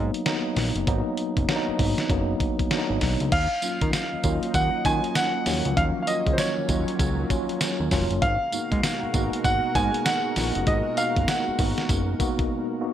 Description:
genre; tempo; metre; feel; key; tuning
R&B, new jack swing; 98 BPM; 4/4; swing 62% on 16ths; Eb minor; A4 = 440 Hz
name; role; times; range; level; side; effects
mellow tine electric piano; accompaniment; 0.0-12.9 s; F3 to Ab4; -28 LUFS; equal; medium stereo tremolo
fat analog bass; bass; 0.0-12.2 s; F1 to Eb3; -27 LUFS; equal; none
dusty soul sampler-style drum kit; drums; 0.1-12.5 s; crash cymbal, hi-hat, kick drum, snare drum, tambourine; -26 LUFS; equal; none
warm grand piano; melody; 3.3-12.8 s; C5 to Ab5; -27 LUFS; right 1 dB; none
lush unison pad; sustained chords; 4.0-12.9 s; Cb3 to Bb4; -34 LUFS; equal; chorus
room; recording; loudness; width
moderate plate reverb, RT60 1.3 s; bright 1980s-style digital production; -22 LUFS; side -10 dB against mid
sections
0.0-3.3 A section; 3.3-12.9 B section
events
break 12.5-12.9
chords
0.0 Abm9; 3.3 Ebm9; 8.2 Abm9

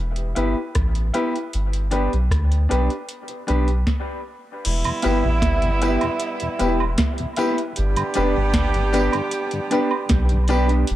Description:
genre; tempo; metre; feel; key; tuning
dub reggae; 77 BPM; 4/4; straight; unclear; A4 = 441 Hz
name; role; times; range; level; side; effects
soft dub sub bass; bass; 0.0-11.0 s; E1 to D2; -20 LUFS; equal; none
warm upright piano; stabs; 0.2-10.7 s; D4 to B4; -26 LUFS; left 3 dB; low-pass filter, dub echo
soft vintage rhythm box; drums; 0.2-11.0 s; crash cymbal, hi-hat, kick drum, rim click, snare drum; -24 LUFS; equal; none
mellow electric guitar; accompaniment; 0.4-10.8 s; B3 to G4; -28 LUFS; right 3 dB; low-pass filter, dub echo
warm horn section; second line; 4.7-10.5 s; G3 to G4; -25 LUFS; right 3 dB; dub echo
mellow tonewheel organ; accompaniment; 4.9-10.6 s; E2 to G4; -31 LUFS; left 2 dB; slow rotary speaker, dub echo
woodblock and tambourine; percussion; 4.9-10.7 s; none; -31 LUFS; right 7 dB; dub echo
room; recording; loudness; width
light reverb; none; -18 LUFS; side -14 dB against mid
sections
0.0-4.7 A section; 4.7-11.0 B section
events
stop 3.9-4.7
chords
0.0 Em; 1.5 G; 4.7 Em; 7.8 G

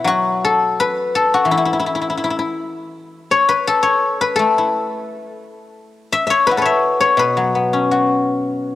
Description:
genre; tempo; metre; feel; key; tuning
chinese traditional, Chinese solo plucked strings; 84 BPM; 2/4; uneven beats, rubato; E zhi mode; A4 = 439 Hz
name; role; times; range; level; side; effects
guzheng; solo; 0.0-8.8 s; B2 to F#5; -15 LUFS; left 3 dB; cassette tape
room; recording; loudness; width
light reverb, small room reverb; home recording on cassette; -14 LUFS; side -13 dB against mid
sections
0.0-2.9 A section; 2.9-8.8 B section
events
none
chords
none

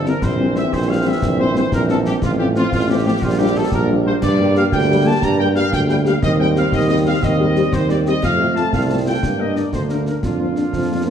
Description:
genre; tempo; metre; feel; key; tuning
military-style march for wind band; 120 BPM (dotted quarters); 6/8; straight; unclear; A4 = 439 Hz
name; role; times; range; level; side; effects
clear trumpet section; melody; 0.0-11.1 s; F4 to Bb5; -22 LUFS; left 1 dB; none
mellow French horn section; accompaniment; 0.0-11.1 s; E3 to G4; -22 LUFS; left 4 dB; none
warm trombone section; sustained chords; 0.0-11.1 s; E3 to D4; -24 LUFS; right 2 dB; none
warm tuba; bass; 0.0-11.1 s; G1 to G2; -18 LUFS; right 2 dB; none
concert snare drum, clash cymbals and concert bass drum; drums; 0.1-11.1 s; none; -25 LUFS; left 1 dB; none
warm euphonium; second line; 10.7-11.1 s; F3 to Bb3; -23 LUFS; right 1 dB; none
room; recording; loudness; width
wet recital hall reverb, RT60 1.6 s; dark, warm production; -15 LUFS; side -8 dB against mid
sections
0.0-11.1 A section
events
none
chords
0.2 C7/Bb; 2.2 F/A; 3.2 Gm7/Bb; 4.2 Gm; 6.2 Cm/Eb; 8.2 F; 9.2 Gm; 10.2 Bb/F

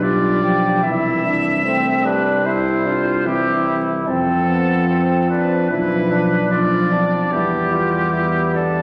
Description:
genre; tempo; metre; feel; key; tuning
classical, brass quintet; 74 BPM; 4/4; straight; C major; A4 = 439 Hz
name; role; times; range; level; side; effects
clear trumpet; melody; 0.0-8.8 s; G4 to E5; -24 LUFS; equal; none
mellow flugelhorn; second line; 0.0-8.8 s; B3 to G4; -25 LUFS; equal; none
mellow trombone; accompaniment; 0.0-8.8 s; E3 to A3; -24 LUFS; equal; none
warm French horn; accompaniment; 0.0-8.8 s; B3 to E4; -27 LUFS; equal; none
mellow tuba; bass; 0.0-8.8 s; B1 to F2; -25 LUFS; equal; none
room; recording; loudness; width
wet concert hall reverb, RT60 2.1 s; vinyl crackle; -18 LUFS; mono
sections
0.0-8.8 A section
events
none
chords
0.0 G7/B; 0.8 C; 4.1 F; 5.7 Bdim; 7.3 Em

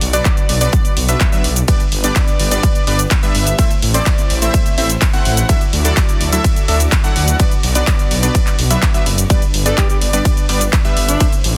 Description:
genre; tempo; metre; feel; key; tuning
EDM, festival progressive house; 126 BPM; 4/4; straight; G major; A4 = 445 Hz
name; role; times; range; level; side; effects
rich chamber string section; sustained chords; 0.0-11.6 s; G3 to D5; -32 LUFS; equal; none
detuned saw bass; bass; 0.0-11.6 s; F#1 to D2; -19 LUFS; equal; sidechain pumping
big-room dance drum kit; drums; 0.0-11.5 s; handclaps, hi-hat, ride cymbal, shaker; -23 LUFS; equal; overdrive, small room ambience
plucky unison lead; arpeggios; 0.1-11.3 s; D5 to F#5; -25 LUFS; equal; sidechain pumping, tape echo
supersaw stab; riff; 0.1-11.3 s; F#3 to F#5; -25 LUFS; equal; sidechain pumping, tape echo
electronic kick drum; drums; 0.3-11.3 s; none; -17 LUFS; equal; overdrive, small room ambience
breathy alto saxophone; melody; 9.7-11.2 s; D4 to A4; -27 LUFS; equal; tape echo
room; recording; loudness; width
little or no reverb; dense, heavily limited modern master, faint mains hum; -14 LUFS; mono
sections
0.0-11.6 A section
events
none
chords
0.0 Bm; 1.7 G; 3.6 Am; 5.5 Dadd9; 7.4 Bm; 9.3 G

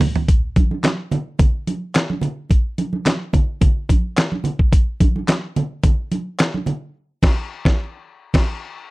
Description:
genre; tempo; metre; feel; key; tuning
funk; 108 BPM; 4/4; straight; none; none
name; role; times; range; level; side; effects
dusty soul sampler-style drum kit; drums; 0.0-8.5 s; crash cymbal, handclaps, hi-hat, kick drum, snare drum, toms; -16 LUFS; equal; none
congas; percussion; 0.0-6.8 s; none; -23 LUFS; right 2 dB; none
room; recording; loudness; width
little or no reverb; dry, close 1970s-style studio recording; -17 LUFS; side -21 dB against mid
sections
0.3-8.9 A section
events
drum fill 0.0; band accent 6.9-8.9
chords
none

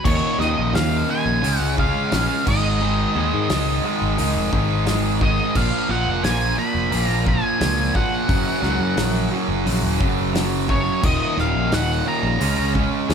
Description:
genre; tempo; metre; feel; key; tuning
quiet-loud alternative rock; 88 BPM; 4/4; straight; Eb minor; A4 = 440 Hz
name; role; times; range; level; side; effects
octave-fuzz lead guitar; melody; 0.0-12.7 s; Db5 to Cb6; -25 LUFS; equal; distortion
crunchy overdriven guitar; riff; 0.0-13.1 s; Eb2 to Db4; -26 LUFS; left 10 dB; none
thick fuzz guitar; riff; 0.0-13.1 s; Eb2 to Db4; -23 LUFS; right 8 dB; distortion
modern bright picked electric bass; bass; 0.1-13.1 s; Eb1 to Ab2; -24 LUFS; equal; none
loose indie drum kit; drums; 0.1-13.1 s; crash cymbal, hi-hat, kick drum, snare drum; -25 LUFS; equal; none
room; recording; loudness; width
light reverb; band playing live in one room; -18 LUFS; side -7 dB against mid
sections
0.1-13.1 A section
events
none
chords
0.1 Eb5; 1.4 Db; 2.5 Ab5; 5.6 Bb5; 8.3 Gb; 11.0 Eb5; 12.4 Db5

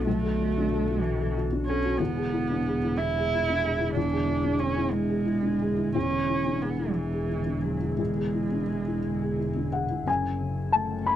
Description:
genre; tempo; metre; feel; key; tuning
neoclassical piano and strings; 57-62 BPM (dotted quarters); 6/8; rubato; unclear; A4 = 435 Hz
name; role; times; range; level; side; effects
felt-muted upright piano; accompaniment; 0.0-11.2 s; B1 to B5; -29 LUFS; left 4 dB; none
glassy FM pad; sustained chords; 0.0-11.2 s; D3 to A4; -35 LUFS; left 1 dB; ensemble chorus, built-in reverb
dark double bass; bass; 0.0-11.2 s; E1 to B1; -32 LUFS; equal; none
dark cello; second line; 0.1-11.2 s; E3 to E4; -28 LUFS; right 4 dB; none
room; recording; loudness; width
light reverb; dry, close 1970s-style studio recording; -24 LUFS; side -11 dB against mid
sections
0.0-10.1 A section; 10.1-11.2 B section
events
none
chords
0.0 Bm7; 2.0 E7; 10.1 F#m

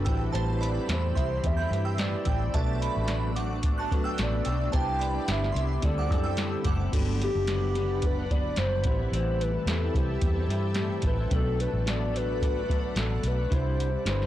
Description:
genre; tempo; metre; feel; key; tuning
indie pop, bedroom pop; 109 BPM; 4/4; swing 55% on 16ths; unclear; A4 = 440 Hz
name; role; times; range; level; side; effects
shimmering bell with halo; second line; 0.0-6.8 s; C5 to G6; -35 LUFS; right 5 dB; ensemble chorus, lush chorus, slapback echo
clean electric guitar; accompaniment; 0.0-14.3 s; G2 to A4; -35 LUFS; left 4 dB; analog chorus, vibrato effect
mellow tonewheel organ; accompaniment; 0.0-14.3 s; B3 to F#5; -36 LUFS; right 4 dB; slow rotary speaker, cassette tape
shimmering ambient pad; sustained chords; 0.0-14.3 s; C3 to B5; -38 LUFS; equal; chorus, built-in reverb
vintage muted fingered electric bass; bass; 0.0-14.3 s; F#1 to G2; -29 LUFS; equal; transformer saturation
soft vintage rhythm box; drums; 0.1-14.3 s; crash cymbal, hi-hat, kick drum, snare drum; -29 LUFS; equal; none
hollow clarinet-like synth lead; melody; 0.9-14.3 s; G4 to G5; -32 LUFS; left 1 dB; lush chorus, slapback echo
room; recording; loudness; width
digital ambience; blown-out, overdriven recording, overdrive; -25 LUFS; side -13 dB against mid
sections
0.0-6.9 A section; 6.9-14.3 B section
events
soft synth lead solo 0.0-6.9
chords
0.1 Am7; 2.5 Bm7; 4.7 Cmaj7; 5.8 D7sus4; 6.9 Gmaj7; 8.9 Am7; 11.3 Bm7; 13.5 Cmaj7

